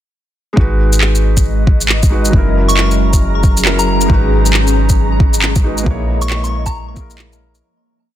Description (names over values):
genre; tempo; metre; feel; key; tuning
future garage; 136 BPM; 4/4; swing 63% on 16ths; G# minor; A4 = 440 Hz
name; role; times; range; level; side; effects
felt-muted upright piano; accompaniment; 0.5-7.6 s; F#3 to C#5; -20 LUFS; equal; sidechain pumping, ping-pong delay
ethereal airy pad; sustained chords; 1.3-7.6 s; E#3 to A#5; -20 LUFS; equal; ensemble chorus, built-in reverb, vintage 12-bit sampler grit, sidechain pumping
soft 808-style bass; bass; 0.6-7.6 s; F#1 to A#1; -15 LUFS; equal; sidechain pumping
electronic kick drum; drums; 0.6-7.1 s; none; -13 LUFS; equal; overdrive
electronic shaker and handclaps; drums; 0.9-7.6 s; none; -16 LUFS; equal; overdrive
soft synth bell; melody; 2.7-7.3 s; A#5 to C#6; -22 LUFS; left 2 dB; chorus, phaser, ping-pong delay
room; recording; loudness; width
little or no reverb; dense, heavily limited modern master; -10 LUFS; side -12 dB against mid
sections
0.6-7.6 groove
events
fade-out 5.3-7.6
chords
0.6 G#m7; 2.3 F#7; 4.1 G#m7; 5.9 A#m7b5